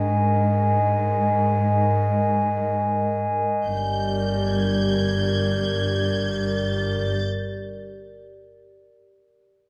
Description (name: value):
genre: cinematic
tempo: free time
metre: none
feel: none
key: G phrygian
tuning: A4 = 438 Hz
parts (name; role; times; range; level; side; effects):
- glass harmonica; sustained chords; 0.0-7.1 s; G4 to Ab5; -26 LUFS; equal; none
- dark studio double bass section; bass; 0.0-7.1 s; G1 to Ab1; -31 LUFS; equal; none
- warm studio cello section; bass; 0.0-7.1 s; G2 to Ab2; -27 LUFS; equal; none
- warm studio violin section; texture; 3.7-7.2 s; G6 to Ab6; -33 LUFS; equal; none
room: moderate scoring stage reverb, RT60 1.9 s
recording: none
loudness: -23 LUFS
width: mono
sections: 0.0-3.7 A section; 3.7-7.7 B section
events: none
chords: 0.0 Absus2; 3.7 Gm